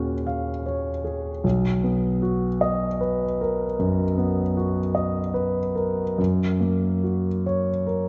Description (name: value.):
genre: classical, impressionist solo piano.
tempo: 47-53 BPM.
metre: 4/4.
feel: rubato.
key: unclear.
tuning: A4 = 440 Hz.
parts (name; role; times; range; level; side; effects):
clear concert grand piano; solo; 0.0-8.1 s; B1 to E#5; -24 LUFS; equal; none.
room: wet concert hall reverb, RT60 1.9 s.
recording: nothing above 7.7 kHz.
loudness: -24 LUFS.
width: mono.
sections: 0.0-8.1 A section.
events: none.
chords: 0.0 D#m11; 1.4 Bmaj7; 6.2 F#.